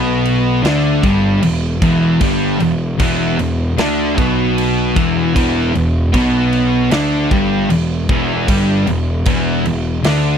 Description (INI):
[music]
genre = stoner and doom metal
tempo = 76 BPM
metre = 4/4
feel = straight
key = E minor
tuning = A4 = 440 Hz
[part]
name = overdriven electric guitar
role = riff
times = 0.0-10.4 s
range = E2 to D4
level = -20 LUFS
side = equal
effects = none
[part]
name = thick fuzz guitar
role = riff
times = 0.0-10.4 s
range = E2 to D4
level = -18 LUFS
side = left 8 dB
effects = distortion
[part]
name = thick fuzz guitar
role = riff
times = 0.0-10.4 s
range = E2 to D4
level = -19 LUFS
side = right 8 dB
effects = distortion
[part]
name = fuzz picked electric bass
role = bass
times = 0.0-10.4 s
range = E1 to D2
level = -20 LUFS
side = equal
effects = overdrive
[part]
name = big rock drum kit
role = drums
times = 0.3-10.2 s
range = crash cymbal, kick drum, snare drum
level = -21 LUFS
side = equal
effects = none
[sound]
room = little or no reverb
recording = dry, close 1970s-style studio recording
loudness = -13 LUFS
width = side -8 dB against mid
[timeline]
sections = 0.0-10.4 A section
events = none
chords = 0.0 Em